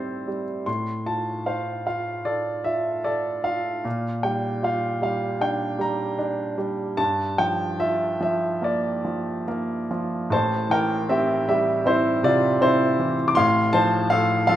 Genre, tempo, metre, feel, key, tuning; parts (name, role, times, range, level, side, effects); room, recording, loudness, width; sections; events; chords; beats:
classical, lyrical solo piano; 69-81 BPM; 4/4; rubato; A4 = 440 Hz
clear baby grand piano; solo; 0.0-14.6 s; A1 to D6; -21 LUFS; equal
moderate recital hall reverb, RT60 1.4 s; minimal, uncompressed stereo recording; -21 LUFS; side -12 dB against mid
0.0-10.3 A section; 10.3-14.6 A section
0.0 Am7; 0.7 Dm9/A; 3.9 Bb6; 7.0 Gm7; 10.3 Am7; 13.4 Bbmaj7sus2/A (rootless)
| 0.68 1.47 2.27 3.06 | 3.85 4.64 5.42 6.19 | 6.99 7.81 8.64 9.49 | 10.32 11.11 11.87 12.62 | 13.37 14.12